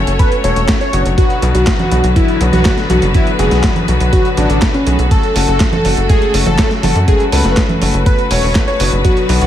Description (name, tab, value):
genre	italo disco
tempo	122 BPM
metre	4/4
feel	straight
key	F# minor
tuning	A4 = 440 Hz
part	clear symphonic string section	sustained chords	0.0-9.5 s	C#3 to C#5	-20 LUFS	equal	none
part	warm electric grand piano	stabs	0.0-9.5 s	B2 to A4	-20 LUFS	left 8 dB	none
part	tight sequencer bass	bass	0.0-9.5 s	E1 to F#2	-14 LUFS	equal	none
part	dusty soul sampler-style drum kit	drums	0.1-9.5 s	congas, handclaps, hi-hat, snare drum	-18 LUFS	right 1 dB	overdrive, small room ambience
part	wide unison lead	melody	0.2-9.5 s	C#4 to C#5	-18 LUFS	equal	ping-pong delay
part	electronic kick drum	drums	0.2-9.1 s	none	-14 LUFS	equal	overdrive, small room ambience
room	little or no reverb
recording	none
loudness	-10 LUFS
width	side -11 dB against mid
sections	0.0-9.5 A section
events	none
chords	0.0 F#m; 1.2 Bm; 5.1 F#m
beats	0.19 0.69 | 1.18 1.67 2.16 2.65 | 3.15 3.64 4.13 4.62 | 5.11 5.60 6.10 6.59 | 7.08 7.57 8.06 8.55 | 9.05